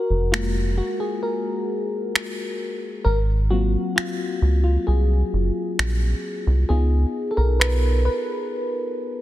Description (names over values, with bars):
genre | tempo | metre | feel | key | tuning
contemporary R&B | 66 BPM | 4/4 | straight | G# dorian | A4 = 439 Hz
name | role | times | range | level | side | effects
mellow FM electric piano | accompaniment | 0.0-9.2 s | F#3 to B4 | -25 LUFS | left 2 dB | chorus
rubbery square bass | bass | 0.1-8.1 s | E#1 to C#2 | -19 LUFS | equal | none
electronic finger snaps | drums | 0.3-7.8 s | none | -26 LUFS | equal | soft clipping on snare
room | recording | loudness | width
digital ambience | dense, heavily limited modern master | -20 LUFS | side -14 dB against mid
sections
0.0-9.2 A section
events
break 0.0-9.2; FM electric piano solo 0.0-9.2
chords
0.0 F#maj9; 3.1 G#13; 6.7 C#7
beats
0.33 1.23 2.14 | 3.05 3.96 4.87 5.78 | 6.69 7.60 8.51